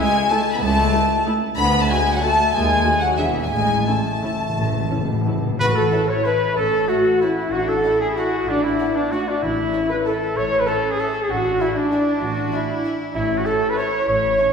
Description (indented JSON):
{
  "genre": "classical",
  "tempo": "163-207 BPM",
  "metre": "3/4",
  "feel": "rubato",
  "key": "A major",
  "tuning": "A4 = 436 Hz",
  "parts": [
    { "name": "rich symphonic violin section", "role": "melody", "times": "0.0-14.5 s", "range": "E5 to B5", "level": "-26 LUFS", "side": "left 3 dB", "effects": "none" },
    { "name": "small flute group", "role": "second line", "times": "0.0-5.4 s", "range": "E5 to B5", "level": "-24 LUFS", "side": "equal", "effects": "none" },
    { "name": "warm symphonic violin section", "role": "second line", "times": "0.0-14.5 s", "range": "C#5 to B5", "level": "-30 LUFS", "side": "left 1 dB", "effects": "none" },
    { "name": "dark symphonic viola section", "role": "accompaniment", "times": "0.0-14.5 s", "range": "A3 to C#5", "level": "-27 LUFS", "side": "right 1 dB", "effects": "none" },
    { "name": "mellow French horn section", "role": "sustained chords", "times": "0.0-14.5 s", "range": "E3 to C#5", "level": "-22 LUFS", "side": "left 2 dB", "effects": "none" },
    { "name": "warm symphonic cello section", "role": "bass", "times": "0.6-14.5 s", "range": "C#2 to F#4", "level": "-28 LUFS", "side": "right 1 dB", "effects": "none" },
    { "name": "warm symphonic double bass section", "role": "bass", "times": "0.6-14.3 s", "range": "E1 to D#2", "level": "-28 LUFS", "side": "right 2 dB", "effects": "none" },
    { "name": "timpani", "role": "percussion", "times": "3.5-6.1, 9.4-9.9 s", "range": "A2", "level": "-26 LUFS", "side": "left 1 dB", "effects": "none" },
    { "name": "clear oboe", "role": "second line", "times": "5.6-14.5 s", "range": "D4 to C#5", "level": "-29 LUFS", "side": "equal", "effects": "none" },
    { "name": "clear trumpet", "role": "stabs", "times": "5.6-14.5 s", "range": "D4 to C#5", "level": "-26 LUFS", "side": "right 1 dB", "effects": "none" }
  ],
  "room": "wet scoring stage reverb, RT60 1.9 s",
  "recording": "recorded in a church or concert hall",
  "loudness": "-17 LUFS",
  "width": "side -6 dB against mid",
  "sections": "0.0-5.6 A section; 5.6-14.5 B section",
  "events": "timpani fill 3.5-5.6",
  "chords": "0.0 A; 1.6 D; 2.5 D#dim; 3.2 E; 3.5 A; 7.5 D/A; 9.4 A; 11.3 E7(no3)/A; 13.1 A",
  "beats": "0.30 | 0.61 0.93 1.26 | 1.57 1.89 2.22 | 2.53 2.85 3.18 | 3.52 3.87 4.23 | 4.57 4.91 5.26 | 5.60 5.92 6.25 | 6.57 6.88 7.21 | 7.51 7.83 8.16 | 8.47 8.78 9.11 | 9.42 9.73 10.05 | 10.36 10.67 10.99 | 11.29 11.60 11.91 | 12.21 12.52 12.84 | 13.14 13.45 13.78 | 14.08 14.39"
}